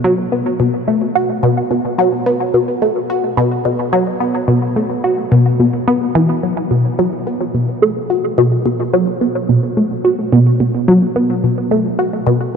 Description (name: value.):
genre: ambient.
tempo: 108 BPM.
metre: 4/4.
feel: straight.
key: unclear.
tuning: A4 = 439 Hz.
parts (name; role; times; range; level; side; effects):
resonant blip pluck; solo; 0.0-12.5 s; B2 to F#4; -13 LUFS; equal; phaser, tape echo.
room: wet huge ambient reverb, RT60 8.3 s.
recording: none.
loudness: -13 LUFS.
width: side -6 dB against mid.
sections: 0.0-6.7 A section; 6.7-12.6 B section.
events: none.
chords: none.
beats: | 0.04 0.60 1.16 1.71 | 2.27 2.82 3.38 3.93 | 4.49 5.04 5.60 6.16 | 6.71 7.27 7.82 8.38 | 8.93 9.49 10.04 10.60 | 11.16 11.71 12.27.